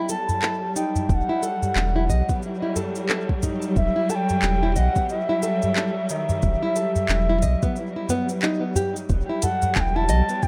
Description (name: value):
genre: organic downtempo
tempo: 90 BPM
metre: 4/4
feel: swing 59% on 16ths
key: E harmonic minor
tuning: A4 = 441 Hz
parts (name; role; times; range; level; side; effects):
- bright reedy bansuri; melody; 0.0-10.5 s; E5 to A5; -29 LUFS; equal; tape echo
- rich studio string section; sustained chords; 0.0-10.5 s; F#3 to G3; -31 LUFS; equal; sidechain pumping
- nylon-string guitar; arpeggios; 0.0-10.4 s; D#3 to D#5; -30 LUFS; equal; tape echo
- organic electronic drum kit; drums; 0.1-10.5 s; cabasa, handclaps, hi-hat; -30 LUFS; equal; overdrive, small room ambience
- udu; percussion; 0.3-9.7 s; none; -30 LUFS; equal; none
- round analog bass; bass; 1.1-10.2 s; E1 to B1; -24 LUFS; equal; none
- electronic kick drum; drums; 1.1-10.5 s; none; -26 LUFS; equal; overdrive, small room ambience
room: light reverb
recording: echo-heavy mix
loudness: -23 LUFS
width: mono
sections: 0.0-9.1 A section; 9.1-10.5 B section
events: break 7.8-9.1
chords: 0.0 Emadd9